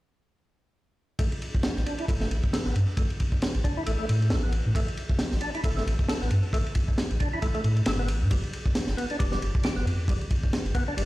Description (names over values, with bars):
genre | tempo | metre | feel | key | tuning
breakbeat, breaks | 135 BPM | 4/4 | swing 57% on 16ths | unclear | A4 = 438 Hz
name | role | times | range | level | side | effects
percussive tonewheel organ | riff | 1.2-11.0 s | G3 to A4 | -34 LUFS | equal | overdrive, chorus vibrato, slow rotary speaker, vintage 12-bit sampler grit, low-pass filter, digital delay
saturated sub bass | bass | 1.2-11.1 s | F1 to A2 | -26 LUFS | equal | none
crunchy breakbeat drum kit | drums | 1.2-11.1 s | kick drum, ride cymbal, snare drum | -27 LUFS | equal | none
room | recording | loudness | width
light reverb, small room ambience | played on a big sound system in a bare room, large studio reverb | -24 LUFS | side -18 dB against mid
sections
1.2-11.1 A section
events
filter sweep on tonewheel organ 1.2-11.1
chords
1.2 N.C.; 8.3 G